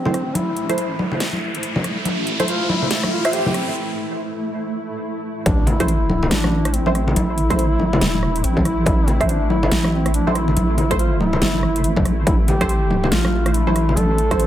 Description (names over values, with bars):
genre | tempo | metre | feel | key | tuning
deep dubstep | 141 BPM | 4/4 | swing 61% on 16ths, half-time | A minor | A4 = 438 Hz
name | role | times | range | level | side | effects
mellow duduk | melody | 0.0-14.5 s | C4 to A4 | -24 LUFS | equal | low-pass filter, dub echo
granular cloud pad | sustained chords | 0.0-14.5 s | A3 to E4 | -27 LUFS | equal | built-in reverb
deep soft wobble bass | bass | 0.0-14.5 s | E1 to C2 | -21 LUFS | equal | chorus, high-pass filter
riser and impact | sound effects | 0.0-7.2 s | none | -28 LUFS | equal | none
filtered dub chord stab | stabs | 0.1-14.4 s | A3 to C5 | -26 LUFS | right 2 dB | phaser, wide subtle chorus, cassette tape, dub echo
dubstep drum kit | drums | 0.1-14.5 s | hi-hat, rim click, snare drum | -24 LUFS | equal | high-pass filter on hats, small room ambience, high-pass filter on snare
congas | percussion | 0.1-14.4 s | none | -23 LUFS | left 1 dB | none
electronic kick drum | drums | 5.5-14.4 s | none | -20 LUFS | equal | distortion, small room ambience
room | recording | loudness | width
light reverb, digital ambience | none | -17 LUFS | side -12 dB against mid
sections
0.0-5.5 A section; 5.5-14.5 B section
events
build-up 0.0-5.5; riser 0.0-3.8; filter sweep on ambient pad 0.0-5.5; filter sweep on duduk 0.0-5.5; break 3.8-5.5; drop 5.5-14.5; impact 5.5-7.2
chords
0.0 A5